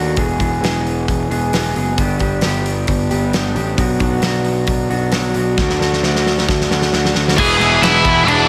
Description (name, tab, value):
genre	quiet-loud alternative rock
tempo	133 BPM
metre	4/4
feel	straight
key	E mixolydian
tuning	A4 = 439 Hz
part	electric guitar through a small old amp	arpeggios	0.0-7.4 s	E2 to G#4	-22 LUFS	equal	slapback echo
part	fuzz picked electric bass	bass	0.0-8.5 s	E1 to D#2	-22 LUFS	equal	overdrive
part	big rock drum kit	drums	0.2-8.4 s	crash cymbal, hi-hat, kick drum, snare drum	-22 LUFS	equal	none
part	octave-fuzz lead guitar	melody	7.4-8.5 s	D4 to G#5	-15 LUFS	equal	distortion, slapback echo
part	distorted electric guitar	riff	7.4-8.5 s	E2 to E3	-23 LUFS	equal	overdrive, slapback echo
part	fuzz guitar	riff	7.4-8.5 s	E3 to E4	-23 LUFS	equal	distortion, slapback echo
part	tight distorted guitar	riff	7.4-8.5 s	E3 to E4	-22 LUFS	equal	distortion, slapback echo
room	wet lush hall reverb, RT60 1.5 s, studio ambience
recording	big arena sound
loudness	-16 LUFS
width	mono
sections	0.0-7.4 A section; 7.4-8.5 B section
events	drum fill 5.6-7.4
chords	0.2 E; 2.0 G; 3.8 Bm; 5.6 D; 7.4 E